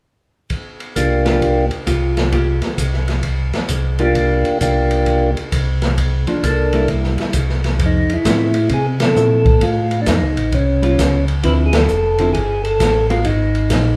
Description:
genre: soul jazz organ trio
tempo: 132 BPM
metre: 4/4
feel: swing 65% on 8ths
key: unclear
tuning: A4 = 440 Hz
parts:
  - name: open jazz drum kit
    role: drums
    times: 0.5-13.9 s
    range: hi-hat, kick drum, ride cymbal, snare drum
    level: -24 LUFS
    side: equal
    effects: none
  - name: percussive tonewheel organ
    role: melody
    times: 1.0-14.0 s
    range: Bb3 to B4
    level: -20 LUFS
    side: equal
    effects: slow rotary speaker
  - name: mellow tonewheel organ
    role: bass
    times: 1.0-14.0 s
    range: F1 to C3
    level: -20 LUFS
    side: equal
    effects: chorus vibrato, slow rotary speaker
  - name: vintage hollow-body jazz guitar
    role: accompaniment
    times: 1.3-13.3 s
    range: D3 to Bb4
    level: -24 LUFS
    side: equal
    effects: none
room: wet large studio reverb, RT60 0.8 s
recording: band playing live in one room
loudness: -16 LUFS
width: mono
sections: 0.5-7.8 A section; 7.8-14.0 B section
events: band accent 8.9, 11.7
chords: 0.5 C7sus4; 6.0 Gm7; 6.9 C7; 7.8 Fmaj7; 9.6 Aaug; 11.4 Dm9; 13.3 Absus2

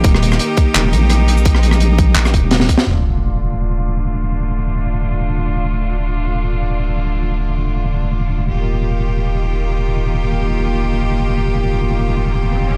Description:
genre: half-time drum and bass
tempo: free time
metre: none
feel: none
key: D phrygian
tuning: A4 = 441 Hz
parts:
  - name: clear chamber cello section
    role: sustained chords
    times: 0.0-12.8 s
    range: D3 to G4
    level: -24 LUFS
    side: equal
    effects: sidechain pumping, low-pass filter
  - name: deep soft wobble bass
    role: bass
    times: 0.0-12.8 s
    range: D1 to Bb1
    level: -19 LUFS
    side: equal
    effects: chorus
  - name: crunchy breakbeat drum kit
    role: drums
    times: 0.0-2.8 s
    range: handclaps, hi-hat, rim click, shaker, snare drum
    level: -20 LUFS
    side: equal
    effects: none
  - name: electronic kick drum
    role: drums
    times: 0.0-2.8 s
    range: none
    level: -15 LUFS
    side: equal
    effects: none
  - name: sub drop and riser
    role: sound effects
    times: 2.9-4.3, 12.3-12.8 s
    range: none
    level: -26 LUFS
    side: equal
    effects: none
room: small room reverb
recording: dry, gritty hardware recording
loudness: -17 LUFS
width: mono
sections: 0.0-2.9 A section; 2.9-12.8 B section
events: drop 0.0-2.9; drum fill 2.5-2.9; band accent 2.8; impact 2.9-4.3; filter sweep on cello section 2.9-12.8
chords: 0.0 Eb; 2.9 Dm; 8.5 Eb

